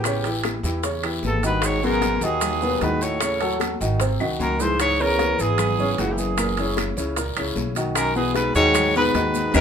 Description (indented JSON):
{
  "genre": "Afro-Cuban jazz",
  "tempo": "152 BPM",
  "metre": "4/4",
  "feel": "straight",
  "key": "unclear",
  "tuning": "A4 = 442 Hz",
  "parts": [
    { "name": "warm trumpet", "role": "melody", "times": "0.0-9.6 s", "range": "F#4 to C#5", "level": "-23 LUFS", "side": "right 1 dB", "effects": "none" },
    { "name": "clear baritone saxophone", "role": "second line", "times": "0.0-9.6 s", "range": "C#2 to A2", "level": "-26 LUFS", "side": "left 2 dB", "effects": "none" },
    { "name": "upright bass", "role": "bass", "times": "0.0-9.6 s", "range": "F#1 to E2", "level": "-27 LUFS", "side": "equal", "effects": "none" },
    { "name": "claves", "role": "percussion", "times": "0.0-9.6 s", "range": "none", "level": "-34 LUFS", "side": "left 2 dB", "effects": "none" },
    { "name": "congas", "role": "percussion", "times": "0.0-9.6 s", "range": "none", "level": "-33 LUFS", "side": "left 3 dB", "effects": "none" },
    { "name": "guiro", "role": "percussion", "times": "0.0-9.6 s", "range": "none", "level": "-36 LUFS", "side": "left 4 dB", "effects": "none" },
    { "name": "timbales", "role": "percussion", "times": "0.0-9.6 s", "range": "none", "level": "-31 LUFS", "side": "right 7 dB", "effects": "none" },
    { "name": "warm grand piano", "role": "accompaniment", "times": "0.1-9.6 s", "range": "A#2 to C#5", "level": "-25 LUFS", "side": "equal", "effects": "none" },
    { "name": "bongos", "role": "percussion", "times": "0.1-9.6 s", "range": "none", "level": "-32 LUFS", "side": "left 7 dB", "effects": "none" },
    { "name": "maracas", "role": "percussion", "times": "0.1-9.6 s", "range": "none", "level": "-34 LUFS", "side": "right 5 dB", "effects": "none" }
  ],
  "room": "moderate studio reverb, RT60 0.5 s",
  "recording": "minimal, uncompressed stereo recording",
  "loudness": "-19 LUFS",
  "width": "side -7 dB against mid",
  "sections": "0.0-9.6 A section",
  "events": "drum fill 4.2-4.8",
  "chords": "0.1 A7; 1.6 G#m7; 3.2 D#m7b5; 4.0 G#7; 4.8 C#m; 6.4 F#7; 8.0 B6"
}